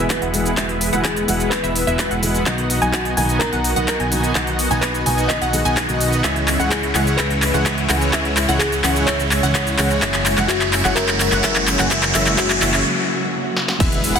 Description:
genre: EDM, festival progressive house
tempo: 127 BPM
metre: 4/4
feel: straight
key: unclear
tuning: A4 = 440 Hz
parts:
  - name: bell-like FM electric piano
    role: melody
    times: 0.0-12.9 s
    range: F#4 to D#5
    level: -26 LUFS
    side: left 2 dB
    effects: chorus, phaser, ping-pong delay
  - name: dark grand piano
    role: accompaniment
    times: 0.0-12.8 s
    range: B2 to G#4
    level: -27 LUFS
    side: right 1 dB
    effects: sidechain pumping
  - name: dark studio string section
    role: sustained chords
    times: 0.0-14.2 s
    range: C#3 to G#4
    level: -29 LUFS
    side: left 1 dB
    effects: none
  - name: wide unison pluck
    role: arpeggios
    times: 0.0-14.2 s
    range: E5 to G#5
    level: -26 LUFS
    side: equal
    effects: sidechain pumping, ping-pong delay
  - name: dense compressed supersaw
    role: riff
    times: 0.0-14.2 s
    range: G#3 to G#5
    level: -22 LUFS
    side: equal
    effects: sidechain pumping, low-pass filter, ping-pong delay
  - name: fat analog bass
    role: bass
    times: 0.0-14.2 s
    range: E1 to C#2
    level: -24 LUFS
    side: equal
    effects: tube saturation, sidechain pumping
  - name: riser, noise sweep and impact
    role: sound effects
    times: 4.1-14.2 s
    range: none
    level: -28 LUFS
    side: equal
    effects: none
  - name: big-room dance drum kit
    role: drums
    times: 0.1-14.2 s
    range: crash cymbal, handclaps, hi-hat, shaker, snare drum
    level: -21 LUFS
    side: equal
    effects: high-pass filter on hats, high-pass filter on toms, high-pass filter on snare, high-pass filter on perc, high-pass filter on cymbals, high-pass filter on room
  - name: electronic kick drum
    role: drums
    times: 0.1-13.9 s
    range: none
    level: -25 LUFS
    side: equal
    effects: overdrive, high-pass filter on kick
room: moderate huge ambient reverb, RT60 4.5 s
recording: dense, heavily limited modern master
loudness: -16 LUFS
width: side -7 dB against mid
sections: 0.0-13.8 A section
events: build-up 0.0-13.8; drum fill 0.0-12.9, 13.6; riser 4.1-12.9; noise sweep 11.9-13.8; break 12.9-13.8; impact 13.8-14.2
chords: 0.0 E; 2.5 B; 6.2 C#m; 10.0 F#

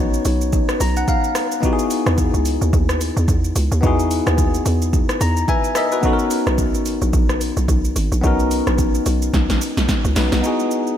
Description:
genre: amapiano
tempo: 109 BPM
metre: 4/4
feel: swing 58% on 16ths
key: E lydian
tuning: A4 = 440 Hz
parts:
  - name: bell-like tine electric piano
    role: accompaniment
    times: 0.0-11.0 s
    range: B3 to A#5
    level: -20 LUFS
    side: left 2 dB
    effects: wide subtle chorus
  - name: hollow log drum bass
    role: bass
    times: 0.0-10.4 s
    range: G#1 to E2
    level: -19 LUFS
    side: right 1 dB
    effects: none
  - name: deep house drum kit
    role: drums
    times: 0.1-11.0 s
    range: hi-hat, kick drum, rim click, shaker, snare drum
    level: -21 LUFS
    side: right 1 dB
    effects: overdrive
room: moderate lush hall reverb, RT60 2.6 s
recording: dreamy mix soaked in reverb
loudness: -16 LUFS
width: side -10 dB against mid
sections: 0.0-10.4 A section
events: drop 0.0-10.4; tine electric piano fill 0.5-1.6, 4.9-6.0; drum fill 9.3-10.4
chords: 0.0 Bmaj9; 1.6 Emaj9; 6.0 Bmaj9; 10.4 Emaj9

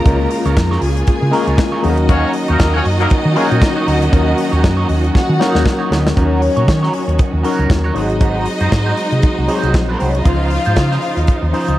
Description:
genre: disco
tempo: 118 BPM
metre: 4/4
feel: swing 56% on 16ths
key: Eb dorian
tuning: A4 = 440 Hz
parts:
  - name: clear studio string section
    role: second line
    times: 0.0-11.8 s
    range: Bb3 to Bb5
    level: -22 LUFS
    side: left 1 dB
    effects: none
  - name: mellow tine electric piano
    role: accompaniment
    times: 0.0-11.8 s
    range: Fb3 to C5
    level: -20 LUFS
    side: left 4 dB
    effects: medium stereo tremolo
  - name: bright studio string section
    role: sustained chords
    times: 0.0-11.8 s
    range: Db3 to C5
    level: -23 LUFS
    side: right 2 dB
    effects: none
  - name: electric guitar at the edge of break-up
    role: accompaniment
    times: 0.1-11.8 s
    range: Eb4 to Db5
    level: -24 LUFS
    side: right 4 dB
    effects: wah, spring reverb
  - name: hollow-body short-scale fingered electric bass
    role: bass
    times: 0.1-11.8 s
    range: Ab1 to Eb3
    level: -16 LUFS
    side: equal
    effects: none
  - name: modern studio drum kit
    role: drums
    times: 0.1-11.8 s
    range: hi-hat, kick drum, snare drum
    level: -17 LUFS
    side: equal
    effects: none
  - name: warm horn section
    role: stabs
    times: 2.1-3.5 s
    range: Gb3 to Db5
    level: -20 LUFS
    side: left 2 dB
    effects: none
room: studio reverb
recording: dark, warm production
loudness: -12 LUFS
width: side -15 dB against mid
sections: 0.0-6.2 A section; 6.2-11.8 B section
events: drum fill 5.2-6.2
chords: 0.0 Db6; 1.8 Ebm7; 8.0 Ab7; 10.3 Dbmaj9

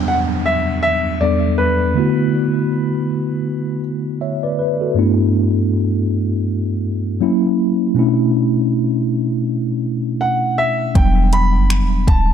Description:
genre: contemporary R&B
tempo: 80 BPM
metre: 4/4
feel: swing 58% on 16ths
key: B minor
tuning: A4 = 440 Hz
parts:
  - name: clear concert grand piano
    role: melody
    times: 0.0-3.8, 10.2-12.3 s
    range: B4 to B5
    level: -20 LUFS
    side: equal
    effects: ping-pong delay
  - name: mellow tine electric piano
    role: accompaniment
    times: 0.0-12.3 s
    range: E2 to E5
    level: -17 LUFS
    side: equal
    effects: medium stereo tremolo
  - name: downlifter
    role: sound effects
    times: 0.0-5.0 s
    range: none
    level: -30 LUFS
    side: right 1 dB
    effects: none
  - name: clean 808-style bass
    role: bass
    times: 11.0-12.3 s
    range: D1 to F#1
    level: -15 LUFS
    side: equal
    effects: none
  - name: smooth R&B drum kit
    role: drums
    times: 11.0-12.3 s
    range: finger snaps, hi-hat, kick drum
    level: -16 LUFS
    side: equal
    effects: none
room: light reverb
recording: dark, warm production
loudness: -15 LUFS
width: side -8 dB against mid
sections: 0.0-12.3 A section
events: none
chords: 0.0 Em7; 2.0 D69; 5.0 G6; 7.2 F#7; 8.0 Bm11; 11.0 Em7

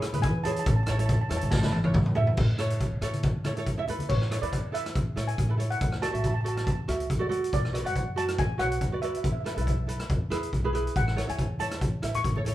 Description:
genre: calypso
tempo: 140 BPM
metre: 4/4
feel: swing 53% on 16ths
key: A major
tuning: A4 = 441 Hz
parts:
  - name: steel pan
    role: melody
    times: 0.0-12.5 s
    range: C#5 to C#6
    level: -33 LUFS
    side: equal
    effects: none
  - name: ukulele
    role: accompaniment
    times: 0.0-12.5 s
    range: E4 to E5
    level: -32 LUFS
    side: right 2 dB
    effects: none
  - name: upright bass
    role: bass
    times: 0.0-12.5 s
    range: G#1 to E3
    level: -30 LUFS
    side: equal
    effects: none
  - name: street-band drum kit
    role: drums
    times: 0.0-12.5 s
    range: crash cymbal, hi-hat, kick drum, rim click, snare drum, toms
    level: -28 LUFS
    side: equal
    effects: none
  - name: congas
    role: percussion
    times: 0.1-4.1, 11.6-12.5 s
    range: none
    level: -34 LUFS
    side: left 1 dB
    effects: none
room: moderate large studio reverb, RT60 0.8 s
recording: band playing live in one room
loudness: -25 LUFS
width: side -14 dB against mid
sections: 0.0-2.4 A section; 2.4-4.1 B section; 4.1-12.5 C section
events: drum fill 1.5-2.4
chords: 0.0 E7; 0.7 Amaj7; 2.4 A; 5.8 Dadd9; 7.5 Bm; 9.2 Esus4; 10.1 E; 11.0 A

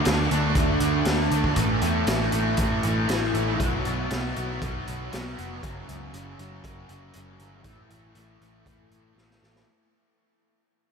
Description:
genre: rock, shoegaze and dream pop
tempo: 118 BPM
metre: 4/4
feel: straight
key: A major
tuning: A4 = 443 Hz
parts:
  - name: fuzz guitar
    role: riff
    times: 0.0-9.7 s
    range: F#2 to D4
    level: -26 LUFS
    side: equal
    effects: distortion, wide subtle chorus
  - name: vintage muted picked electric bass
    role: bass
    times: 0.1-9.6 s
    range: F1 to E2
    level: -29 LUFS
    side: equal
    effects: none
  - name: raw garage drum kit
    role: drums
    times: 0.1-9.7 s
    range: hi-hat, kick drum, snare drum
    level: -29 LUFS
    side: equal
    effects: none
room: wet huge ambient reverb, RT60 7.3 s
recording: dreamy mix soaked in reverb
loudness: -22 LUFS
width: side -6 dB against mid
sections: 0.0-9.7 A section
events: fade-out 0.0-9.7; drum fill 9.2-9.7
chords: 0.0 D5; 1.6 A5; 3.6 B5; 5.6 F#5; 7.6 A5

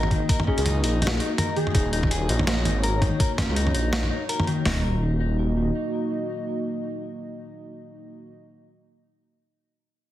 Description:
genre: half-time drum and bass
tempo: 165 BPM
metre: 4/4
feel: swing 57% on 16ths, half-time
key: Eb minor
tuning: A4 = 439 Hz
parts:
  - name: dark analog pad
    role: sustained chords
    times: 0.0-8.3 s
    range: Bb3 to Eb5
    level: -30 LUFS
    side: right 1 dB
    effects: chorus, sidechain pumping
  - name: clean electric guitar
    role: arpeggios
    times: 0.0-4.8 s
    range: Eb3 to Bb4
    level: -30 LUFS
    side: left 3 dB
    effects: ping-pong delay
  - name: dark detuned saw bass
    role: bass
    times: 0.0-5.7 s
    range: Eb1 to Db2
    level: -24 LUFS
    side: equal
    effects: none
  - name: boom bap sampler-style drum kit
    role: drums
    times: 0.0-4.6 s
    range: hi-hat, snare drum, toms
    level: -27 LUFS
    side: equal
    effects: none
  - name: boom bap sampler-style drum kit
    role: drums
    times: 0.1-4.8 s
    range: hi-hat, kick drum, snare drum, toms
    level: -24 LUFS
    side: equal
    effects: none
  - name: airy dreamy lead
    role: melody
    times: 0.5-1.8 s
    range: Ab4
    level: -32 LUFS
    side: equal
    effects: chorus, cassette tape, ping-pong delay
room: moderate echo chamber reverb, RT60 1.7 s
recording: heavily compressed radio sound, multiband compression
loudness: -21 LUFS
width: side -13 dB against mid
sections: 0.0-4.7 A section; 4.7-7.6 B section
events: drop 0.0-4.7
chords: 0.0 Ebm

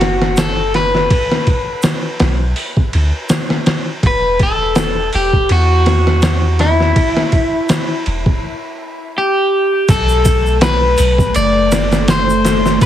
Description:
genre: trip hop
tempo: 82 BPM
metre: 4/4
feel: swing 56% on 16ths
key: unclear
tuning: A4 = 438 Hz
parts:
  - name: electric guitar at the edge of break-up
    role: melody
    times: 0.0-12.9 s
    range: E4 to D5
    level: -16 LUFS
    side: left 1 dB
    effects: dub echo
  - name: soft 808-style bass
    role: bass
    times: 0.0-12.8 s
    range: E1 to E2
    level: -16 LUFS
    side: equal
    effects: none
  - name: trip hop sampler-style drum kit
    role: drums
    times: 0.0-12.9 s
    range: hi-hat, kick drum, ride cymbal, snare drum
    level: -16 LUFS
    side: equal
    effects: none
  - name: tube shaker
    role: percussion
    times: 0.4-12.9 s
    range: none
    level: -30 LUFS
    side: right 1 dB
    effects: none
  - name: deep dark ambient pad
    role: sustained chords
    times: 10.5-12.9 s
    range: A3 to A4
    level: -19 LUFS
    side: equal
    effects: chorus, built-in reverb, vintage 12-bit sampler grit
room: light reverb, digital ambience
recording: heavily compressed radio sound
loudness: -12 LUFS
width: side -11 dB against mid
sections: 0.0-9.9 A section; 9.9-12.9 B section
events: break 8.4-9.9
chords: 0.0 B5; 4.0 N.C.; 9.9 Bm7

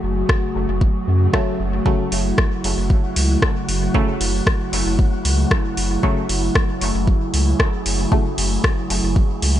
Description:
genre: dub techno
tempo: 115 BPM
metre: 4/4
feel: straight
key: F# minor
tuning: A4 = 440 Hz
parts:
  - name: airy breathy pad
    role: sustained chords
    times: 0.0-9.6 s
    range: C#3 to F#4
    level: -24 LUFS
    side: right 2 dB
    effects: chorus, vintage 12-bit sampler grit, sidechain pumping
  - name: round analog bass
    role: bass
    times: 0.0-9.6 s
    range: F#1 to F#2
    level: -20 LUFS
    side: equal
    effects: sidechain pumping
  - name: wind-like tuned noise texture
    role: texture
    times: 0.0-9.6 s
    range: F#4 to F#5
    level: -31 LUFS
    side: left 1 dB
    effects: built-in reverb, sidechain pumping
  - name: electronic kick drum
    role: drums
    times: 0.3-9.3 s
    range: none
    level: -18 LUFS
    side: equal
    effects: overdrive
  - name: soft vintage rhythm box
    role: drums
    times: 0.3-9.6 s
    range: hi-hat, rim click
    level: -23 LUFS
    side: left 1 dB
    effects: overdrive, dub echo
  - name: filtered dub chord stab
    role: stabs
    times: 1.3-8.3 s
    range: C#3 to A3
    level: -25 LUFS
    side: equal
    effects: chorus, phaser, sidechain pumping, dub echo
room: light reverb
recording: nothing above 10.5 kHz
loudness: -16 LUFS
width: side -12 dB against mid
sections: 0.0-9.6 A section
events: none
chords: 0.0 F#m

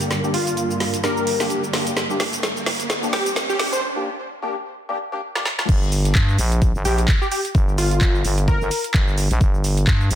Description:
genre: bass house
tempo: 129 BPM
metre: 4/4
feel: swing 57% on 16ths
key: G minor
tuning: A4 = 439 Hz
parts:
  - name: muted studio string section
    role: sustained chords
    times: 0.0-3.8 s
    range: G2 to Bb3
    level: -28 LUFS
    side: right 2 dB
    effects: stereo widening, sidechain pumping
  - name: percussive organ stab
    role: stabs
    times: 0.0-5.7 s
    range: Bb3 to G4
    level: -27 LUFS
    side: left 2 dB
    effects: ensemble chorus, sidechain pumping, digital delay
  - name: garage drum kit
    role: drums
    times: 0.0-10.2 s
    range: crash cymbal, handclaps, hi-hat, shaker, snare drum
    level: -24 LUFS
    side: equal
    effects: overdrive
  - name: riser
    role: sound effects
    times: 0.5-3.8 s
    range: none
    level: -32 LUFS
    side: right 2 dB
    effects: none
  - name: plucky unison lead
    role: melody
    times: 0.3-3.8, 6.8-8.8 s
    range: F4 to C5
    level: -25 LUFS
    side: left 1 dB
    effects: digital delay
  - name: growling FM bass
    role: bass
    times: 5.7-10.2 s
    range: G1 to G2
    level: -20 LUFS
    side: equal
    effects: sidechain pumping
  - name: electronic kick drum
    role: drums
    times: 5.7-10.0 s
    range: none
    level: -18 LUFS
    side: equal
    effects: overdrive
room: light reverb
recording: dense, heavily limited modern master, high-pass filter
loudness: -18 LUFS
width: side -11 dB against mid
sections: 0.0-5.7 A section; 5.7-10.2 B section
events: build-up 0.0-5.7; drum fill 0.0-3.8, 5.3-5.7; filter sweep on synth stab 0.0-5.7; riser 0.5-3.8; break 3.8-5.7; drop 5.7-10.2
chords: 0.0 Gm

